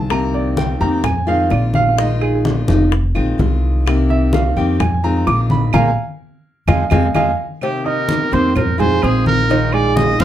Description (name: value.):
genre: latin, Cuban son and guajira.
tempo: 128 BPM.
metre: 4/4.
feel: straight.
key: unclear.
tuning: A4 = 437 Hz.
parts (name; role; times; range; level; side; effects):
picked steel-string acoustic guitar; accompaniment; 0.0-10.2 s; C3 to G4; -20 LUFS; left 2 dB; none.
warm concert grand piano; arpeggios; 0.0-10.2 s; Eb3 to Eb6; -19 LUFS; right 4 dB; slapback echo.
upright bass; bass; 0.0-10.2 s; F1 to F2; -17 LUFS; equal; none.
bongos and cowbell; percussion; 0.1-10.2 s; none; -25 LUFS; left 5 dB; none.
claves; percussion; 0.1-10.0 s; none; -28 LUFS; right 8 dB; none.
congas; percussion; 0.1-10.2 s; none; -22 LUFS; left 1 dB; none.
warm trumpet; melody; 7.6-10.2 s; G4 to F5; -19 LUFS; right 2 dB; plate reverb.
room: light reverb.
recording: dark, warm production.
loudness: -14 LUFS.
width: side -11 dB against mid.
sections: 0.0-7.6 A section; 7.6-10.2 B section.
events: grand piano solo 0.0-7.6; band accent 5.7-7.6; drum fill 6.9-7.6.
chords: 0.1 Cm7; 1.1 Fm7; 2.0 Bb7sus4; 2.9 Fm7; 3.9 Cm7; 4.8 Fm7; 5.7 Bb7sus4; 6.7 Fm7; 7.6 Cm7; 8.6 Fm7.